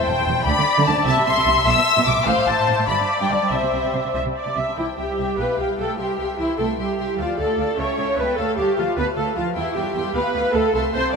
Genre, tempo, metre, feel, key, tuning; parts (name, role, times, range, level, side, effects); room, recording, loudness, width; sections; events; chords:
quick classical-period movement for string orchestra; 100 BPM (dotted quarters); 6/8; rubato; C major; A4 = 440 Hz
warm symphonic violin section; second line; 0.0-11.2 s; C5 to E6; -25 LUFS; left 3 dB
rich symphonic viola section; accompaniment; 0.0-11.2 s; E4 to E5; -21 LUFS; equal
warm symphonic violin section; melody; 0.1-11.2 s; C5 to E6; -26 LUFS; left 6 dB
clear symphonic double bass section; bass; 0.1-11.2 s; E1 to E2; -29 LUFS; right 3 dB
warm symphonic cello section; bass; 0.1-11.1 s; E2 to C#4; -27 LUFS; right 6 dB
wet cathedral reverb, RT60 6.1 s; in a vast, echoing space; -18 LUFS; side -5 dB against mid
0.0-4.8 A section; 4.8-11.2 A section
0.5 Bm7/D; 1.1 C6; 1.7 Bmadd11; 2.3 F/A; 2.9 G; 3.5 C; 5.4 G7/B; 6.0 C; 7.2 Dm; 7.8 A7/C#; 8.4 Dm; 9.6 C/E; 10.1 Bdim